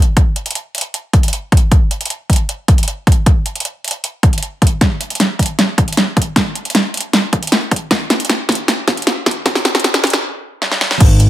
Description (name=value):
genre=future bass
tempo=155 BPM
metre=4/4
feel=half-time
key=unclear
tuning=A4 = 439 Hz
part: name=pop drum kit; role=drums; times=0.0-11.3 s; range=crash cymbal, hi-hat, snare drum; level=-15 LUFS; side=equal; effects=overdrive
part: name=electronic kick drum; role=drums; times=0.2-11.1 s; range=none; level=-12 LUFS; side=equal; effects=overdrive
part: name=fat analog bass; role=bass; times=11.0-11.3 s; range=G#1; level=-10 LUFS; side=equal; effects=sidechain pumping
room=light reverb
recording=high-pass filter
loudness=-13 LUFS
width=side -14 dB against mid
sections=0.0-11.0 A section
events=build-up 0.0-11.0; filter sweep 0.0-11.0; drum fill 4.8-10.2, 10.6-11.0; stop 10.2-11.0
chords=none